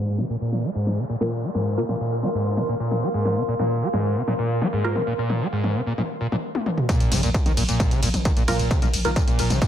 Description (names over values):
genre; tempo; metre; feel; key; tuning
driving peak-time techno; 132 BPM; 4/4; straight; Bb minor; A4 = 440 Hz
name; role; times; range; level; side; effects
screaming distorted acid line; riff; 0.0-9.7 s; Ab2 to Bb3; -24 LUFS; equal; distortion, analog chorus, cassette tape, sidechain pumping
downlifter and sub drop; sound effects; 0.0-3.3, 6.9-8.7 s; none; -36 LUFS; equal; none
granular cloud pad; texture; 1.4-6.4 s; Bb4 to C6; -28 LUFS; left 1 dB; built-in reverb, sidechain pumping
punchy analog drum machine; drums; 0.2-9.7 s; hi-hat, ride cymbal, tambourine, toms; -28 LUFS; left 1 dB; none
filtered dub chord stab; stabs; 1.2-1.9, 4.8-4.9, 8.5-9.2 s; Bb3 to Bb4; -28 LUFS; right 1 dB; phaser, lush chorus, vintage 12-bit sampler grit, sidechain pumping, ping-pong delay
electronic kick drum; drums; 6.9-9.7 s; none; -21 LUFS; equal; distortion, overdrive
growling 808-style bass; bass; 7.0-9.6 s; Bb1; -27 LUFS; equal; overdrive, sidechain pumping, low-pass filter
room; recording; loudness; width
light reverb, digital ambience; low-pass filter; -20 LUFS; side -10 dB against mid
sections
0.0-6.9 A section; 6.9-9.7 B section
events
filter sweep on acid bass 0.0-6.9; filter sweep 0.0-6.9; drum fill 6.5-6.9; drop 6.9-9.7; impact 6.9-8.7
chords
0.0 Bb5